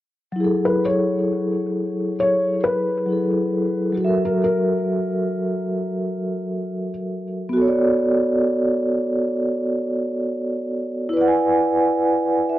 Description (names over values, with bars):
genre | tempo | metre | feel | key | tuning
hip hop | 67 BPM | 4/4 | swing 57% on 16ths | F# minor | A4 = 440 Hz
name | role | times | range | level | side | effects
vibraphone with soft mallets | accompaniment | 0.3-12.6 s | F#3 to G#5 | -19 LUFS | equal | low-pass filter
felt-muted upright piano | melody | 0.7-6.9 s | A#4 to C#5 | -23 LUFS | left 1 dB | low-pass filter, tape echo
room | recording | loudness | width
moderate studio reverb, RT60 0.5 s | cassette tape | -19 LUFS | side -14 dB against mid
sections
0.4-12.6 A section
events
vibraphone fill 12.0-12.6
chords
0.4 F#m9; 4.0 F#7; 7.6 Bm7; 11.1 E7